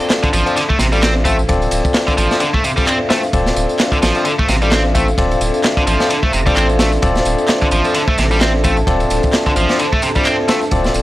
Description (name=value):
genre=breakbeat, breaks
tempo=130 BPM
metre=4/4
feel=swing 57% on 16ths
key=D minor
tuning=A4 = 440 Hz
part: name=dark analog pad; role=sustained chords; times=0.1-11.0 s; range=D4 to A5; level=-22 LUFS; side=equal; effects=chorus, sidechain pumping
part: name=barky tine electric piano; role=stabs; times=0.0-11.0 s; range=C4 to E5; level=-19 LUFS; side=left 3 dB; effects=vintage 12-bit sampler grit, tape echo
part: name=electronic tambourine and handclaps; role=drums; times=0.0-11.0 s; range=none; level=-25 LUFS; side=right 1 dB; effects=none
part: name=crunchy breakbeat drum kit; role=drums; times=0.1-11.0 s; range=kick drum, ride cymbal, snare drum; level=-18 LUFS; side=equal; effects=none
part: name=tight distorted guitar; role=riff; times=0.2-10.6 s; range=C3 to C4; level=-18 LUFS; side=equal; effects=distortion, tube saturation, vintage 12-bit sampler grit, tape echo
part: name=saturated sub bass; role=bass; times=0.3-11.0 s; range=D1 to A1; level=-18 LUFS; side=equal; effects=none
room=small room ambience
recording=dry, gritty hardware recording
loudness=-12 LUFS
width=side -16 dB against mid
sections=0.0-11.0 A section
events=none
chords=0.0 Dm7